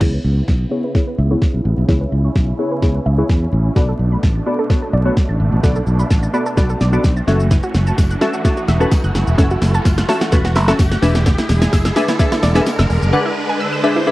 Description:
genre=dance-pop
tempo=128 BPM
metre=4/4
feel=straight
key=unclear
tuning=A4 = 440 Hz
part: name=glassy wavetable pluck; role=accompaniment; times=0.0-14.1 s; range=B3 to F#5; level=-20 LUFS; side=left 1 dB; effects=chorus, sidechain pumping, low-pass filter
part: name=supersaw chords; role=sustained chords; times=0.0-14.1 s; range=B2 to F#4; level=-25 LUFS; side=right 1 dB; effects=phaser, sidechain pumping, low-pass filter
part: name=wide unison pluck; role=arpeggios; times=0.0-14.1 s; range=D3 to B6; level=-25 LUFS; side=right 2 dB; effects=sidechain pumping, low-pass filter, slapback echo
part: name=fingered electric bass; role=bass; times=0.0-13.1 s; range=E1 to E2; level=-16 LUFS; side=equal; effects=sidechain pumping
part: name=smooth R&B drum kit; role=drums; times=0.0-13.1 s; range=crash cymbal, hi-hat, kick drum, shaker, snare drum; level=-16 LUFS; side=equal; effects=none
part: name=riser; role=sound effects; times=2.2-14.1 s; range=none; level=-28 LUFS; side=equal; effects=none
part: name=tambourine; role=percussion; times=8.0-12.8 s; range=none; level=-38 LUFS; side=left 6 dB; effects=none
room=little or no reverb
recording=dry, close 1970s-style studio recording, vinyl crackle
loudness=-13 LUFS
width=side -18 dB against mid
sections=0.0-14.1 A section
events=build-up 0.0-14.1; drum fill 0.0-13.1; filter sweep 0.0-14.1; riser 2.2-14.1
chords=0.0 C#m7; 3.8 Bm7; 7.3 F#m7; 11.0 E7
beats=| 0.01 0.48 0.95 1.42 | 1.89 2.36 2.83 3.29 | 3.76 4.23 4.70 5.17 | 5.64 6.11 6.58 7.04 | 7.51 7.98 8.45 8.92 | 9.39 9.86 10.32 10.79 | 11.26 11.73 12.20 12.67 | 13.14 13.61 14.07

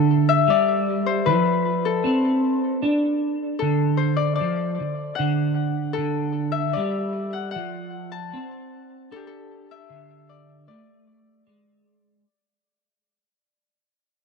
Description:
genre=rock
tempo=76 BPM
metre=4/4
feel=straight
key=D mixolydian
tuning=A4 = 441 Hz
part: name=Celtic harp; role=melody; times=0.0-12.5 s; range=G4 to A5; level=-24 LUFS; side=left 9 dB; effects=tape echo
part: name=clean electric guitar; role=riff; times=0.0-12.2 s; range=D3 to D4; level=-22 LUFS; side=right 2 dB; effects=rotary speaker, double-tracked left and right
room=light reverb, studio reverb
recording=none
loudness=-20 LUFS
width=side -5 dB against mid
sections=0.0-12.2 A section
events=fade-out 0.0-12.2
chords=0.0 D5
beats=0.47 1.25 2.04 | 2.82 3.61 4.39 5.18 | 5.96 6.75 7.53 8.32 | 9.10 9.89 10.68 11.46

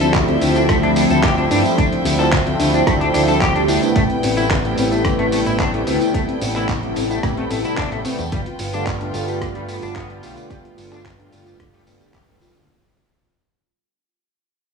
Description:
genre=nu-disco, nu disco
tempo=110 BPM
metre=4/4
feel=straight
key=unclear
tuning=A4 = 440 Hz
part: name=mellow synth brass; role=accompaniment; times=0.0-12.7 s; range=C3 to A4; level=-20 LUFS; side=equal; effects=chorus, phaser, cassette tape, sidechain pumping, analog delay
part: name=rich chamber string section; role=sustained chords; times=0.0-12.7 s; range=F3 to G5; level=-25 LUFS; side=left 1 dB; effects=sidechain pumping
part: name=soft round pluck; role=arpeggios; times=0.0-12.6 s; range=A3 to G4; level=-26 LUFS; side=right 1 dB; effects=chorus, sidechain pumping, tape echo
part: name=clean electric guitar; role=riff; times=0.0-12.5 s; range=D3 to A4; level=-25 LUFS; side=left 4 dB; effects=analog chorus, analog delay
part: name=fingered electric bass with an envelope filter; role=bass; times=0.0-12.7 s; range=G1 to G2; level=-24 LUFS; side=equal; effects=none
part: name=dusty soul sampler-style drum kit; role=drums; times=0.0-12.7 s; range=handclaps, hi-hat, rim click, tambourine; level=-26 LUFS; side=equal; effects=none
part: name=electronic kick drum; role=drums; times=0.1-12.3 s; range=none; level=-22 LUFS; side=equal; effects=none
room=light reverb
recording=studio ambience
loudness=-15 LUFS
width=side -5 dB against mid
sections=0.0-12.7 A section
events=drop 0.0-12.7; fade-out 4.0-12.7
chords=0.0 Dm11; 4.0 Am9; 8.3 G7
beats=0.14 0.69 1.23 | 1.78 2.33 2.87 3.42 | 3.96 4.51 5.05 5.60 | 6.14 6.69 7.23 7.78 | 8.32 8.87 9.42 9.96 | 10.51 11.05 11.60 12.14

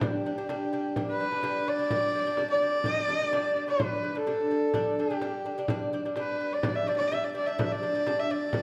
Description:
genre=mongolian traditional, Mongolian folk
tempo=127 BPM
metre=4/4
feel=straight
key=G gong mode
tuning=A4 = 440 Hz
part: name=lute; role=arpeggios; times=0.0-8.6 s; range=G3 to D4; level=-34 LUFS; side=equal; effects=none
part: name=frame drum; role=percussion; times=0.0-8.6 s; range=none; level=-37 LUFS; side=equal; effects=none
part: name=clear horsehead fiddle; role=melody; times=0.1-8.6 s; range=G4 to E5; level=-31 LUFS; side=equal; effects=none
room=wet recital hall reverb, RT60 1.6 s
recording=none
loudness=-29 LUFS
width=mono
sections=0.0-8.6 A section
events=none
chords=0.0 G5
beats=| 0.02 0.49 0.96 1.44 | 1.91 2.38 2.86 3.33 | 3.80 4.28 4.75 5.22 | 5.70 6.17 6.64 7.12 | 7.59 8.06 8.53

